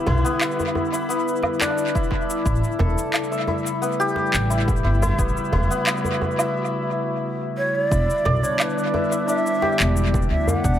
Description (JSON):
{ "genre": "organic downtempo", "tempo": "88 BPM", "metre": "4/4", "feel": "straight", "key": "E dorian", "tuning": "A4 = 440 Hz", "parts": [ { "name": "warbly tape-like pad", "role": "sustained chords", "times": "0.0-10.8 s", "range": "C#3 to F#4", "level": "-27 LUFS", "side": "left 1 dB", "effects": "chorus, built-in reverb, vintage 12-bit sampler grit, sidechain pumping" }, { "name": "santur", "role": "arpeggios", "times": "0.0-10.8 s", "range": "B3 to E5", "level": "-24 LUFS", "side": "left 2 dB", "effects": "analog delay" }, { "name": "upright bass", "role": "bass", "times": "0.1-10.8 s", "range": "E1 to D2", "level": "-22 LUFS", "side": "equal", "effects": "none" }, { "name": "djembe", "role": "percussion", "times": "0.1-10.6 s", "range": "none", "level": "-28 LUFS", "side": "right 2 dB", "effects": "none" }, { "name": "electronic shaker, handclaps and woodblock", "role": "drums", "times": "0.3-10.8 s", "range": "none", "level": "-27 LUFS", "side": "equal", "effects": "tape echo" }, { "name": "electronic kick drum", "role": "drums", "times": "2.0-10.8 s", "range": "none", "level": "-24 LUFS", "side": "equal", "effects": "none" }, { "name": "breathy bright low ney", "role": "melody", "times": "7.6-10.8 s", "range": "B4 to F#5", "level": "-24 LUFS", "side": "right 2 dB", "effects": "dub echo" } ], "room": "moderate spring reverb, RT60 2.4 s", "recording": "echo-heavy mix", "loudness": "-19 LUFS", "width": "side -10 dB against mid", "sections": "0.0-7.9 A section; 7.9-10.8 B section", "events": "break 6.5-7.9", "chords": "0.0 Em7; 2.5 A7; 7.9 Em7" }